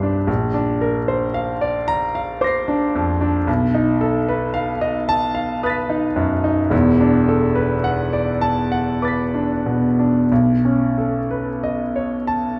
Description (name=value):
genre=classical, impressionist solo piano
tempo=45-57 BPM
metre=3/4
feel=rubato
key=unclear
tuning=A4 = 439 Hz
part: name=clear concert grand piano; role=solo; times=0.0-12.6 s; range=E1 to C7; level=-19 LUFS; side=equal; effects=none
room=wet recital hall reverb, RT60 1.6 s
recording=none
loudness=-19 LUFS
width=mono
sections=0.0-12.6 A section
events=none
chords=0.3 Bbadd9; 3.5 B7#11; 6.7 E9sus4; 10.3 B9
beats=| 0.28 1.35 2.42 | 3.48 4.55 5.62 | 6.72 7.85 9.03 | 10.30 11.62